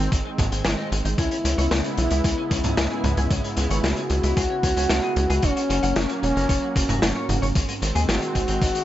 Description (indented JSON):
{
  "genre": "synthwave",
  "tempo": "113 BPM",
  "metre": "4/4",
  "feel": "straight",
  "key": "C# dorian",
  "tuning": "A4 = 440 Hz",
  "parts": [
    { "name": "warm analog pad", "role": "sustained chords", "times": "0.0-8.8 s", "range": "C#3 to E4", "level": "-29 LUFS", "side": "right 1 dB", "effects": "chorus, sidechain pumping" },
    { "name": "clean electric guitar", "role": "riff", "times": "0.0-8.8 s", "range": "G#3 to F#5", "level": "-33 LUFS", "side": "left 3 dB", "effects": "lush chorus, digital delay" },
    { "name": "tight sequencer bass", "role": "bass", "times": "0.0-8.7 s", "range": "E1 to D#2", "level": "-24 LUFS", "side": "equal", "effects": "sidechain pumping" },
    { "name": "raw garage drum kit", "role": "drums", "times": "0.0-8.8 s", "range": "hi-hat, snare drum, toms", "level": "-26 LUFS", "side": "left 1 dB", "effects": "none" },
    { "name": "electronic kick drum", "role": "drums", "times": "0.1-8.7 s", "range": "none", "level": "-24 LUFS", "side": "equal", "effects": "overdrive" },
    { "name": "expressive portamento lead", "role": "melody", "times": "1.2-8.8 s", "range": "C#4 to F#4", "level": "-26 LUFS", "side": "equal", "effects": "chorus, digital delay" }
  ],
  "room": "light reverb, studio ambience",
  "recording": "nothing above 7.8 kHz",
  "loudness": "-20 LUFS",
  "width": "side -13 dB against mid",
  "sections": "0.0-8.8 A section",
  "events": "none",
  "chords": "0.0 G#; 1.2 C#m7; 5.4 F#; 7.6 G#",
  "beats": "0.12 0.65 | 1.18 1.71 2.25 2.78 | 3.31 3.84 4.37 4.90 | 5.43 5.96 6.49 7.02 | 7.55 8.09 8.62"
}